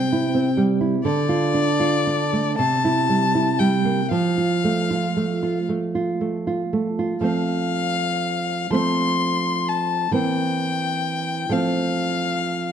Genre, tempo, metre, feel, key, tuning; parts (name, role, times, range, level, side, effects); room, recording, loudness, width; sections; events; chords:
romantic duo for violin and classical guitar; 38-45 BPM (dotted quarters); 6/8; rubato; F major; A4 = 440 Hz
warm violin; melody; 0.0-12.7 s; D5 to C6; -24 LUFS; left 6 dB
nylon-string guitar; accompaniment; 0.0-12.7 s; C3 to F4; -21 LUFS; right 3 dB
moderate recital hall reverb, RT60 1.5 s; dark, warm production; -19 LUFS; side -8 dB against mid
0.0-7.2 A section; 7.2-12.7 B section
0.0 C; 1.0 Dm; 2.6 C7; 4.1 F; 10.1 C7/E; 11.5 F